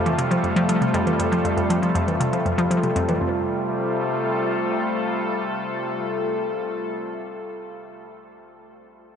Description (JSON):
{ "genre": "ambient, sequencer-driven space music", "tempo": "119 BPM", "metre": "4/4", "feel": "straight", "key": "F major", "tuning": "A4 = 440 Hz", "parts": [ { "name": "evolving wavetable pad", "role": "sustained chords", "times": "0.0-6.8 s", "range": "C3 to A4", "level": "-23 LUFS", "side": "left 1 dB", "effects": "chorus, built-in reverb" }, { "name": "hollow square pluck", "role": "riff", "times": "0.0-3.4 s", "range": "F2 to F3", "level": "-23 LUFS", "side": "equal", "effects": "chorus, analog delay" }, { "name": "soft vintage rhythm box", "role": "percussion", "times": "0.1-3.2 s", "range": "hi-hat, toms", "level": "-33 LUFS", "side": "equal", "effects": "analog delay" } ], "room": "wet huge ambient reverb, RT60 7.7 s", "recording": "nothing above 10.7 kHz", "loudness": "-20 LUFS", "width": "side -7 dB against mid", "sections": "0.0-3.2 A section; 3.2-7.2 B section", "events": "none", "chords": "0.0 Fadd9" }